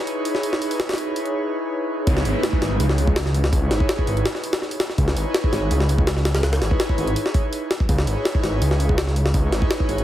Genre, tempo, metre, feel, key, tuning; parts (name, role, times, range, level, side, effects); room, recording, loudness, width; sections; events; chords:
drum and bass, jungle; 165 BPM; 4/4; straight; C# minor; A4 = 440 Hz
airy breathy pad; sustained chords; 0.0-10.0 s; D#4 to C#5; -26 LUFS; equal; chorus
jungle sampler-style drum kit; drums; 0.1-10.0 s; hi-hat, kick drum, snare drum; -22 LUFS; equal
detuned saw bass; bass; 2.1-10.0 s; G#1 to C#2; -20 LUFS; equal
downlifter; sound effects; 2.1-5.0 s; -31 LUFS; equal
light reverb, digital ambience; heavily compressed radio sound, multiband compression; -19 LUFS; side -13 dB against mid
0.0-2.1 A section; 2.1-10.0 B section
drop 2.1-10.0
0.0 C#m9